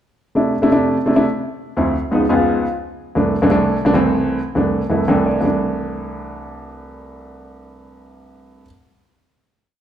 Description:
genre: jazz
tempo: 171 BPM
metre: 4/4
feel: straight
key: C major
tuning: A4 = 440 Hz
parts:
  - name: warm baby grand piano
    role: solo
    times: 0.3-8.7 s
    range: C2 to Ab5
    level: -16 LUFS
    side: equal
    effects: none
room: moderate large studio reverb, RT60 1.3 s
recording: band playing live in one room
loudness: -15 LUFS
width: side -10 dB against mid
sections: 0.0-5.4 A section; 5.4-8.2 final chord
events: grand piano fill 1.9-2.6, 4.9-5.4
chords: 0.0 C6; 1.2 Dm7; 1.9 Db9; 2.6 C6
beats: 0.19 0.54 0.89 | 1.24 1.59 1.94 2.29 | 2.64 2.99 3.34 3.69 | 4.04 4.39 4.74 5.09 | 5.44 5.79 6.14 6.49 | 6.84 7.19 7.54 7.89

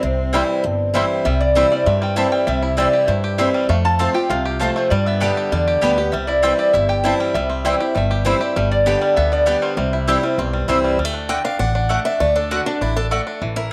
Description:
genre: bluegrass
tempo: 197 BPM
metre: 4/4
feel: straight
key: C major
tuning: A4 = 442 Hz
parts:
  - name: lap resonator guitar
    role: melody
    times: 0.0-10.6 s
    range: B4 to A5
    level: -22 LUFS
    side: equal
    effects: none
  - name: rich fiddle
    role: second line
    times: 0.0-0.9 s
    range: C4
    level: -32 LUFS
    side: equal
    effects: none
  - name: picked acoustic archtop guitar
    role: accompaniment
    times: 0.0-13.7 s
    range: F2 to G5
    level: -23 LUFS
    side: equal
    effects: none
  - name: upright bass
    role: bass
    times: 0.0-13.7 s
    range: G1 to G2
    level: -24 LUFS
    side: equal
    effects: none
  - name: bluegrass banjo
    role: arpeggios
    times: 0.3-13.7 s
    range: D3 to G4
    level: -28 LUFS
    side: equal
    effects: none
  - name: mandolin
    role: stabs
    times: 0.3-13.2 s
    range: A3 to A5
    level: -28 LUFS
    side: equal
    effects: none
room: wet spring reverb, RT60 1.4 s, small room ambience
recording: none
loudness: -18 LUFS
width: mono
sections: 0.0-1.3 A section; 1.3-11.0 B section; 11.0-13.7 C section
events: steel-string acoustic guitar solo 11.0-13.7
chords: 0.0 C; 3.7 F; 4.9 G; 6.1 C; 8.6 G; 9.8 C; 11.0 D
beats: | 0.04 0.34 0.65 0.95 | 1.26 1.56 1.87 2.17 | 2.48 2.78 3.09 3.39 | 3.70 4.00 4.30 4.61 | 4.91 5.22 5.52 5.83 | 6.13 6.43 6.74 7.04 | 7.35 7.65 7.95 8.26 | 8.56 8.87 9.17 9.47 | 9.78 10.08 10.38 10.69 | 10.99 11.29 11.60 11.90 | 12.20 12.51 12.81 13.11 | 13.42 13.72

